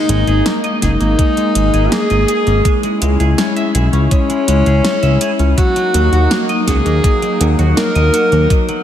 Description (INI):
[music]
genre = synthwave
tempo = 82 BPM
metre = 4/4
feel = straight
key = unclear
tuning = A4 = 438 Hz
[part]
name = warm alto saxophone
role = melody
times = 0.0-8.7 s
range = C#4 to A#4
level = -17 LUFS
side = left 1 dB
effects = ping-pong delay
[part]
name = warm analog pad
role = sustained chords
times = 0.0-8.8 s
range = F#3 to E4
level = -19 LUFS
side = left 1 dB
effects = chorus, sidechain pumping
[part]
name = clean electric guitar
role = arpeggios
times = 0.0-8.8 s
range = F#3 to E5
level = -22 LUFS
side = right 2 dB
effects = lush chorus, analog delay
[part]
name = fat analog bass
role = bass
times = 0.1-8.5 s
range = F#1 to D#2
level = -14 LUFS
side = equal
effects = none
[part]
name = pop drum kit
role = drums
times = 0.1-8.8 s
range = hi-hat, snare drum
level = -22 LUFS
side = equal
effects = overdrive
[part]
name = electronic kick drum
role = drums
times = 0.8-8.7 s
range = none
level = -14 LUFS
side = equal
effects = none
[sound]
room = moderate plate reverb, RT60 2.4 s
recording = dreamy mix soaked in reverb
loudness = -11 LUFS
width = side -10 dB against mid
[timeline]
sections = 0.0-8.8 A section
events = none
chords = 0.0 G#sus2; 2.7 C#m; 5.6 D#m